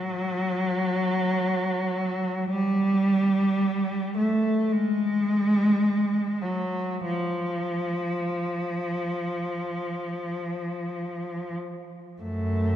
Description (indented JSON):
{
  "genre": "classical, free, expressive piece for unaccompanied cello",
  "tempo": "40-56 BPM",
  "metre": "4/4",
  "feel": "rubato",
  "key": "unclear",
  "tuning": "A4 = 440 Hz",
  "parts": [
    { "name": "rich cello", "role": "solo", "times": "0.0-12.8 s", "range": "F#2 to A3", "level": "-24 LUFS", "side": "equal", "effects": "none" }
  ],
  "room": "wet church reverb, RT60 3.1 s",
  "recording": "dark, warm production",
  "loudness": "-24 LUFS",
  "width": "side -10 dB against mid",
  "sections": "0.0-12.8 A section",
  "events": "none",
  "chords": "none"
}